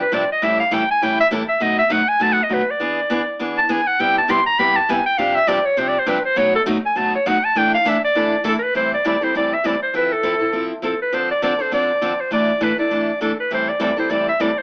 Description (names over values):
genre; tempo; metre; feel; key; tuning
jazz; 202 BPM; 4/4; swing 57% on 8ths; A minor; A4 = 440 Hz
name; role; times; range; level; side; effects
bright clarinet; melody; 0.0-14.6 s; A4 to C6; -17 LUFS; equal; none
picked steel-string acoustic guitar; accompaniment; 0.1-14.5 s; G2 to A4; -21 LUFS; equal; none
room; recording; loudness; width
moderate club reverb, RT60 0.6 s; worn, warbling old tape, cassette tape, warbly pitch drift, AM radio sound; -16 LUFS; side -34 dB against mid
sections
0.0-8.7 A section; 8.7-14.6 B section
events
clarinet solo 0.0-8.7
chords
0.4 A7; 1.6 B7; 2.8 E7; 4.0 Cmaj7; 5.2 G7sus4; 6.4 B7; 7.6 E7sus4; 8.7 Am7; 9.9 Fmaj7; 11.1 Dm7; 12.3 E7sus4; 13.5 Am7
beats
0.13 | 0.42 0.72 1.02 1.32 | 1.61 1.91 2.21 2.51 | 2.80 3.10 3.40 3.69 | 3.99 4.29 4.59 4.88 | 5.18 5.48 5.78 6.07 | 6.37 6.67 6.96 7.26 | 7.56 7.85 8.15 8.45 | 8.74 9.04 9.34 9.64 | 9.93 10.23 10.53 10.83 | 11.12 11.42 11.72 12.02 | 12.31 12.61 12.91 13.20 | 13.50 13.80 14.10 14.39